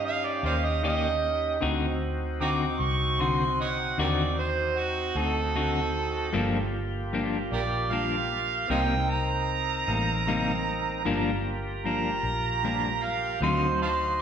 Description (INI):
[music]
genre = slow blues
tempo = 51 BPM (dotted quarters)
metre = 12/8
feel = straight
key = G minor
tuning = A4 = 440 Hz
[part]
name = overdriven harmonica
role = second line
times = 0.0-14.2 s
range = F#4 to D6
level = -28 LUFS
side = right 4 dB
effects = none
[part]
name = bright tonewheel organ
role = sustained chords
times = 0.0-14.2 s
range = Bb3 to C5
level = -34 LUFS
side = equal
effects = overdrive, slow rotary speaker
[part]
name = vintage muted fingered electric bass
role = bass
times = 0.0-14.2 s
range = G1 to G2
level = -31 LUFS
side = equal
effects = none
[part]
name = clean electric guitar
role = accompaniment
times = 0.4-13.7 s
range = G2 to G4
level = -30 LUFS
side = left 4 dB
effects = tremolo
[sound]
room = wet recital hall reverb, RT60 1.4 s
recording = recorded in a church or concert hall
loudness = -25 LUFS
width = side -8 dB against mid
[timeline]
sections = 0.0-14.2 A section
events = harmonica solo 0.0-14.2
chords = 0.0 Eb7; 1.6 D7b9; 6.3 Gm7; 8.7 Cm7; 11.1 Gm7; 13.4 D7b9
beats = 0.44 | 1.62 2.80 3.98 5.16 | 6.34 7.52 8.70 9.88 | 11.06 12.24 13.42